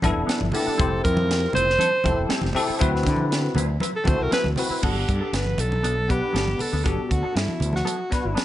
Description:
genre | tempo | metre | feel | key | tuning
electric jazz fusion | 119 BPM | 4/4 | swing 53% on 16ths | G major from 4.8 s | A4 = 438 Hz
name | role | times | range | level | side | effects
bell-like tine electric piano | accompaniment | 0.0-8.4 s | B3 to F#5 | -27 LUFS | left 3 dB | ensemble chorus
mellow electric guitar | stabs | 0.0-8.4 s | E3 to B4 | -32 LUFS | equal | analog chorus
fretless electric bass | bass | 0.0-8.3 s | E1 to D3 | -25 LUFS | equal | none
crisp fusion drum kit | drums | 0.0-8.4 s | crash cymbal, hi-hat, kick drum, snare drum | -27 LUFS | right 1 dB | none
congas | percussion | 0.0-7.8 s | none | -31 LUFS | right 1 dB | none
mellow alto saxophone | melody | 0.5-8.4 s | E4 to C5 | -25 LUFS | right 1 dB | none
room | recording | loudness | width
little or no reverb | nothing above 10.6 kHz | -20 LUFS | side -13 dB against mid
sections
0.0-4.8 A section; 4.8-8.4 B section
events
alto saxophone solo 0.0-4.8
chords
0.0 G69; 0.8 Fmaj9; 2.8 D13; 4.8 Gmaj9

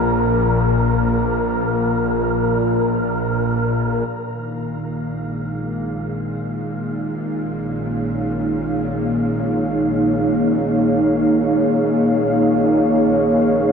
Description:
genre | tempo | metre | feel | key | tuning
dark ambient drone | free time | none | none | Bb minor | A4 = 440 Hz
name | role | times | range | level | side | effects
bowed-like drone | drone | 0.0-13.7 s | Bb1 to Bb2 | -22 LUFS | left 1 dB | built-in reverb
wind-like tuned noise texture | texture | 0.0-13.7 s | Bb4 to F5 | -26 LUFS | equal | built-in reverb, shimmer reverb
dark analog pad | sustained chords | 4.1-13.7 s | Bb3 to F5 | -17 LUFS | equal | chorus, shimmer reverb
room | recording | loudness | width
wet cathedral reverb, RT60 4.6 s | none | -17 LUFS | side -6 dB against mid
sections
0.0-4.1 A section; 4.1-13.7 B section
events
fade-in on synth drone 4.1-13.7; fade-in on synth texture 4.1-13.7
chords
0.0 N.C.; 4.1 Bbm

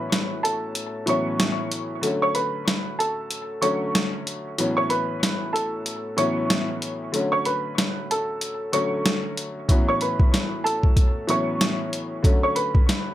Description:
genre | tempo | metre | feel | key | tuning
hip hop, boom-bap hip-hop | 94 BPM | 4/4 | swing 59% on 16ths | A major | A4 = 440 Hz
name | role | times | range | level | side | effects
warm upright piano | melody | 0.0-13.1 s | A4 to C#6 | -26 LUFS | right 1 dB | high-pass filter, low-pass filter, ping-pong delay
clear upright piano | accompaniment | 0.0-13.1 s | A2 to C#4 | -27 LUFS | left 1 dB | cassette tape, high-pass filter, low-pass filter
boom bap sampler-style drum kit | drums | 0.1-13.1 s | hi-hat, kick drum, snare drum | -22 LUFS | equal | none
room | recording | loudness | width
light reverb | none | -21 LUFS | side -13 dB against mid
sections
0.0-13.1 A section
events
break 0.0-9.7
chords
0.0 A6; 2.0 Bm7; 4.6 A6; 7.1 Bm7; 9.7 A6; 12.2 Bm7

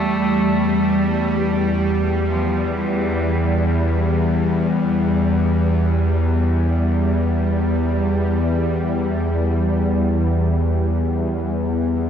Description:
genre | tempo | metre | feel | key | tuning
dark ambient drone | free time | none | none | unclear | A4 = 440 Hz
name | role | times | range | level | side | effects
rich cello | melody | 0.0-3.9 s | E3 to A3 | -25 LUFS | equal | ping-pong delay
bowed-like drone | drone | 0.0-12.1 s | E2 to G3 | -17 LUFS | equal | built-in reverb
room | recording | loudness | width
wet huge ambient reverb, RT60 7.5 s | in a vast, echoing space, cassette tape | -17 LUFS | side -8 dB against mid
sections
0.0-12.1 A section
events
none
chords
0.0 Em

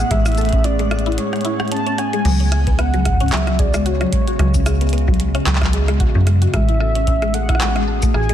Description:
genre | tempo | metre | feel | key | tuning
IDM | 112 BPM | 4/4 | swing 56% on 16ths | unclear | A4 = 437 Hz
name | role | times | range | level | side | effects
warm velvety synth lead | melody | 0.0-8.3 s | C#5 to A5 | -24 LUFS | right 1 dB | chorus, ping-pong delay
warbly tape-like pad | sustained chords | 0.0-8.3 s | A2 to G#4 | -24 LUFS | right 1 dB | chorus, built-in reverb
mallet-like synth pluck | arpeggios | 0.0-8.3 s | F#3 to A4 | -23 LUFS | left 3 dB | analog chorus, vintage 12-bit sampler grit, ping-pong delay
metallic FM bass | bass | 0.0-8.3 s | A1 to F#2 | -18 LUFS | equal | none
twinkling granular texture | texture | 0.1-2.3 s | F#5 | -41 LUFS | right 1 dB | none
electronic kick drum | drums | 0.1-8.1 s | none | -20 LUFS | equal | small room reverb
glitchy drum kit | drums | 0.1-8.3 s | cabasa, crash cymbal, handclaps, hi-hat, rim click | -26 LUFS | right 1 dB | small room reverb, soft clipping on snare, ping-pong delay
room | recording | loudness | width
light reverb | dense, heavily limited modern master | -15 LUFS | side -10 dB against mid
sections
0.0-2.3 A section; 2.3-8.3 A section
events
break 1.2-2.3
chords
0.0 Amaj7; 2.3 C#7sus4; 6.5 Amaj7

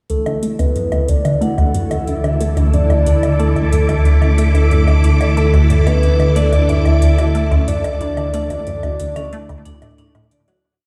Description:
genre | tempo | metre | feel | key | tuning
ambient, sequencer-driven space music | 91 BPM | 4/4 | straight | D major | A4 = 439 Hz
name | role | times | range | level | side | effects
soft octave-layered synth lead | melody | 0.1-9.9 s | A4 to F#5 | -24 LUFS | equal | chorus, delay
string machine, full ensemble | sustained chords | 0.1-10.6 s | E4 to D6 | -26 LUFS | equal | phaser, ensemble chorus
vibraphone with medium hard mallets | arpeggios | 0.1-10.6 s | C#4 to D5 | -33 LUFS | equal | delay
resonant blip pluck | riff | 0.1-10.6 s | D2 to A3 | -20 LUFS | equal | phaser, ensemble chorus, delay
analog drone | bass | 1.4-10.6 s | D2 | -18 LUFS | equal | chorus
electronic hi-hat and woodblock | percussion | 0.1-10.6 s | none | -32 LUFS | equal | delay
room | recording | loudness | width
moderate plate reverb, RT60 2.7 s | played on a big sound system in a bare room, stone room reverb | -15 LUFS | mono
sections
0.1-10.6 A section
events
fade-in on vibraphone 0.1-10.6; filter sweep on synth arpeggio sound 0.1-10.6; fade-out 7.1-10.6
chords
0.1 Dsus2

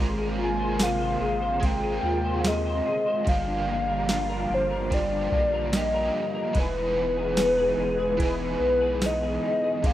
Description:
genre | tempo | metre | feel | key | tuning
dream pop | 73 BPM | 4/4 | straight | unclear | A4 = 444 Hz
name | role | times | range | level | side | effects
overdriven electric guitar | accompaniment | 0.0-9.9 s | G2 to Bb4 | -32 LUFS | right 4 dB | tremolo, analog chorus
lush unison pad | sustained chords | 0.0-9.9 s | C3 to F4 | -35 LUFS | right 1 dB | chorus, phaser
electric guitar through a small old amp | arpeggios | 0.0-9.9 s | G2 to C5 | -32 LUFS | left 1 dB | ensemble chorus, digital delay
round analog bass | bass | 0.0-9.9 s | E1 to Eb2 | -32 LUFS | equal | none
warbly nostalgic lead | melody | 0.4-9.9 s | B4 to Ab5 | -26 LUFS | left 1 dB | chorus, digital delay
soft vintage rhythm box | drums | 0.8-9.9 s | kick drum, ride cymbal, snare drum, tambourine | -26 LUFS | equal | overdrive
room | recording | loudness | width
light reverb | rough home demo mix | -23 LUFS | side -13 dB against mid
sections
0.0-9.9 A section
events
none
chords
0.0 Ab69; 3.3 Ebmaj9/G; 6.6 Emaj7

